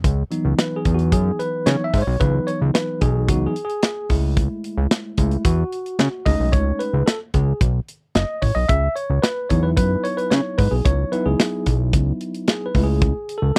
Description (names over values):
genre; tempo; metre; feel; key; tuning
early-eighties boogie funk; 111 BPM; 4/4; straight; C# minor; A4 = 440 Hz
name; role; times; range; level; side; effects
fat analog bass; bass; 0.0-13.5 s; F#1 to C#3; -22 LUFS; equal; none
modern studio drum kit; drums; 0.0-13.6 s; hi-hat, kick drum, snare drum; -22 LUFS; equal; none
tine electric piano; accompaniment; 0.3-13.6 s; E3 to E5; -26 LUFS; equal; none
room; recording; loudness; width
little or no reverb; dry, close 1970s-style studio recording; -20 LUFS; mono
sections
0.0-13.6 A section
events
tine electric piano solo 0.0-13.6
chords
0.0 C#m11; 4.1 F#m9/C#; 6.3 B13; 8.7 C#m11; 12.7 C#m